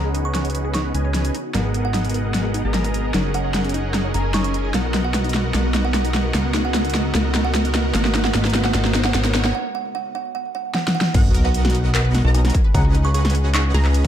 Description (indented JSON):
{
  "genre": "future bass",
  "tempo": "150 BPM",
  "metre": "4/4",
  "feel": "half-time",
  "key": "unclear",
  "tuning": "A4 = 440 Hz",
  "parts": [
    { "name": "kalimba", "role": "melody", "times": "0.0-13.9 s", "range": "F#5 to C#6", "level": "-30 LUFS", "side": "right 6 dB", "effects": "sidechain pumping, ping-pong delay" },
    { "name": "ethereal airy pad", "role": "sustained chords", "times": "0.1-9.5 s", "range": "C#3 to A#4", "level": "-32 LUFS", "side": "left 1 dB", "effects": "none" },
    { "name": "wide unison pluck", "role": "arpeggios", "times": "0.0-14.1 s", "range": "D#4 to C#5", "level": "-33 LUFS", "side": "left 2 dB", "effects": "none" },
    { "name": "dense compressed supersaw", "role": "riff", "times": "0.0-14.1 s", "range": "B3 to A#5", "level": "-26 LUFS", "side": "right 1 dB", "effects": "sidechain pumping, low-pass filter" },
    { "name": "fat analog bass", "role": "bass", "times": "0.0-14.1 s", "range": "F#1 to C#2", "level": "-20 LUFS", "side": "equal", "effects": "sidechain pumping" },
    { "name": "riser and sub drop", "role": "sound effects", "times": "1.5-12.7 s", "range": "none", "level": "-31 LUFS", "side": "equal", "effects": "none" },
    { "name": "big-room dance drum kit", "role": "drums", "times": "0.1-14.1 s", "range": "crash cymbal, handclaps, hi-hat, snare drum", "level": "-23 LUFS", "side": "equal", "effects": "overdrive, studio reverb" },
    { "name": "wide unison pluck", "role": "arpeggios", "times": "11.1-14.1 s", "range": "F#5 to A#5", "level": "-33 LUFS", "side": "equal", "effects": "sidechain pumping" },
    { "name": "electronic kick drum", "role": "drums", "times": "11.1-14.1 s", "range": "none", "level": "-17 LUFS", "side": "equal", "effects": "overdrive, studio reverb" }
  ],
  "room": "light reverb",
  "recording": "dark, warm production",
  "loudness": "-17 LUFS",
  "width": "side -10 dB against mid",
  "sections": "0.0-11.1 A section; 11.1-14.1 B section",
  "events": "build-up 0.0-11.1; drum fill 0.0-9.5, 10.7-11.1; filter sweep on supersaw synth 0.0-11.1; break 9.5-11.1; drop 11.1-14.1; impact 11.1-12.7",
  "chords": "0.0 C#9sus4; 1.3 G#m9; 3.1 F#69; 4.7 Bmaj7; 6.1 C#9sus4; 7.7 G#m9; 9.5 N.C.; 11.1 Bmaj7; 12.5 C#9sus4"
}